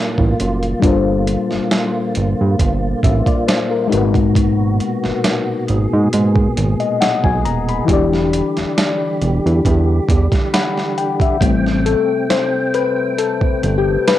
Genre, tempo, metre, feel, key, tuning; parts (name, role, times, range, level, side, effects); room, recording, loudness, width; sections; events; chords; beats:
R&B, neo-soul; 68 BPM; 4/4; swing 54% on 16ths; A4 = 440 Hz
mellow FM electric piano; accompaniment; 0.0-14.2 s; E3 to B5; -18 LUFS; left 6 dB; chorus, phaser
tonewheel organ; sustained chords; 0.0-14.2 s; Bb2 to G5; -22 LUFS; right 2 dB; chorus vibrato, slow rotary speaker
fat analog bass; bass; 0.2-14.0 s; D#1 to G#2; -16 LUFS; right 1 dB
boom bap sampler-style drum kit; drums; 0.2-14.2 s; hi-hat, kick drum, snare drum; -18 LUFS; right 1 dB; cassette tape
light reverb, digital ambience; home recording on cassette; -14 LUFS; side -13 dB against mid
0.0-11.4 A section; 11.4-14.2 B section
FM electric piano fill 10.1-11.4; FM electric piano solo 11.4-14.2
0.0 Gm9; 3.9 G#m9; 7.9 Em7; 11.4 Am7
| 0.82 1.71 2.59 3.47 | 4.35 5.24 6.12 7.00 | 7.88 8.77 9.65 10.53 | 11.41 12.29 13.18 14.06